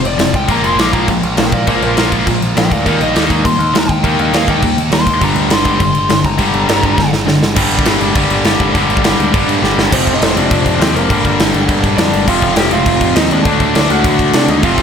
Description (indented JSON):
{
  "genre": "punk rock",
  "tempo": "204 BPM",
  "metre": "4/4",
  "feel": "straight",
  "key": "G minor",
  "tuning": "A4 = 440 Hz",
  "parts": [
    { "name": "lead guitar through a small cranked amp", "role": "melody", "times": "0.0-7.1, 9.9-14.8 s", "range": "Bb3 to D6", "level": "-18 LUFS", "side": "left 1 dB", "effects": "overdrive, digital delay" },
    { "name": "distorted electric guitar", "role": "riff", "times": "0.0-14.8 s", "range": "F2 to G4", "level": "-19 LUFS", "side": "right 13 dB", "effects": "overdrive" },
    { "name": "distorted electric guitar", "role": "riff", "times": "0.0-9.9, 14.6-14.8 s", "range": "F2 to Eb4", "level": "-20 LUFS", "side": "right 2 dB", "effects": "overdrive" },
    { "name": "tight distorted guitar", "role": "riff", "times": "0.0-14.8 s", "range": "F2 to Eb4", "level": "-17 LUFS", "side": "left 10 dB", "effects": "distortion" },
    { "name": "growling picked electric bass", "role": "bass", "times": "0.0-14.8 s", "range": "F1 to C3", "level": "-19 LUFS", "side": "equal", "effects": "overdrive" },
    { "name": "big rock drum kit", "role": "drums", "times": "0.1-14.8 s", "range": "crash cymbal, kick drum, snare drum", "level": "-15 LUFS", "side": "equal", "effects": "none" }
  ],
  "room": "light reverb",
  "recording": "none",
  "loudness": "-10 LUFS",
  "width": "side -7 dB against mid",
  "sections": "0.0-7.6 A section; 7.6-9.9 B section; 9.9-14.8 C section",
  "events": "lead electric guitar solo 0.0-7.6; drum fill 7.0-7.6, 9.6",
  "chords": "0.5 Bb; 2.9 Eb; 5.2 Gm; 9.9 F; 11.1 Gm; 12.3 F; 13.5 D"
}